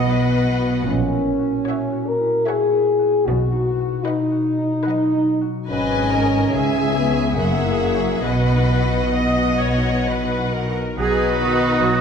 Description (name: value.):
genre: classical, slow romantic movement for symphony orchestra.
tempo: 65-76 BPM.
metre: 3/4.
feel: rubato.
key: B major.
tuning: A4 = 440 Hz.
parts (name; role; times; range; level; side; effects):
warm symphonic violin section; melody; 0.0-12.0 s; B4 to G#5; -28 LUFS; left 4 dB; none.
rich chamber violin section; second line; 0.0-12.0 s; D#4 to E5; -26 LUFS; equal; none.
clear chamber viola section; accompaniment; 0.0-12.0 s; D#3 to D#5; -26 LUFS; left 1 dB; none.
warm French horn section; sustained chords; 0.0-12.0 s; A#3 to A#4; -20 LUFS; left 1 dB; none.
concert harp; arpeggios; 0.0-12.0 s; F#2 to C#5; -26 LUFS; left 7 dB; none.
rich chamber double bass section; bass; 0.0-12.0 s; F#1 to C#2; -24 LUFS; right 4 dB; none.
rich studio cello section; bass; 0.0-12.0 s; C#2 to G#4; -25 LUFS; right 4 dB; none.
mellow silver concert flute; second line; 11.0-12.0 s; D#6; -24 LUFS; right 1 dB; none.
warm oboe; second line; 11.0-12.0 s; F#4; -25 LUFS; right 3 dB; none.
room: wet scoring stage reverb, RT60 1.5 s.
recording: nothing above 10.6 kHz.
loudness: -17 LUFS.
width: side -6 dB against mid.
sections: 0.0-11.0 A section; 11.0-12.0 A section.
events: none.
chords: 0.0 B; 0.9 F#7/A#; 3.3 B; 5.7 G#m; 6.5 C#m; 7.4 F#9; 8.2 B.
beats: 0.06 | 0.87 1.67 2.47 | 3.27 4.07 4.87 | 5.71 6.53 7.36 | 8.25 9.16 10.08 | 10.98 11.82.